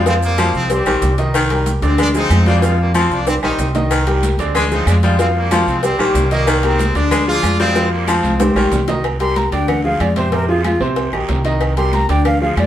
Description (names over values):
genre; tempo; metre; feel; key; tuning
latin, salsa; 187 BPM; 4/4; straight; C minor; A4 = 439 Hz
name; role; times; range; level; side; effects
bright trumpet section; melody; 0.0-8.7 s; G3 to F4; -22 LUFS; equal; none
raspy baritone saxophone; second line; 0.0-8.8 s; Eb3 to Ab3; -20 LUFS; left 2 dB; none
bright upright piano; accompaniment; 0.0-12.7 s; C3 to F5; -19 LUFS; left 1 dB; none
upright bass; bass; 0.0-12.7 s; Bb1 to F2; -18 LUFS; equal; none
agogo bells and timbales; percussion; 0.1-12.7 s; none; -27 LUFS; right 6 dB; none
congas; percussion; 0.1-12.7 s; none; -24 LUFS; left 1 dB; none
cowbell and bongos; percussion; 0.1-12.7 s; none; -26 LUFS; left 3 dB; none
maracas; percussion; 0.1-9.0 s; none; -35 LUFS; right 5 dB; none
claves; percussion; 0.4-12.7 s; none; -32 LUFS; left 2 dB; none
guiro; percussion; 3.9-12.7 s; none; -32 LUFS; right 5 dB; none
breathy bright concert flute; melody; 9.2-12.7 s; F4 to C6; -20 LUFS; equal; none
room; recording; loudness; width
wet studio reverb, RT60 0.8 s; band playing live in one room; -13 LUFS; side -11 dB against mid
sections
0.0-9.0 A section; 9.0-12.7 B section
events
drum fill 3.3-3.9, 8.2-9.0; flute solo 9.0-12.7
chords
0.1 Fm; 0.7 Cm; 1.3 Cm7; 2.0 Dm7b5; 2.6 Fm; 3.3 Cm; 3.9 Cm7; 4.5 Dm7b5; 5.2 Fm; 5.8 Cm; 6.5 Cm7; 7.1 Ddim; 7.8 Fm; 8.4 Cm; 9.0 C5; 9.7 Dm7b5; 10.3 Fm; 11.0 Cm; 11.6 Cm7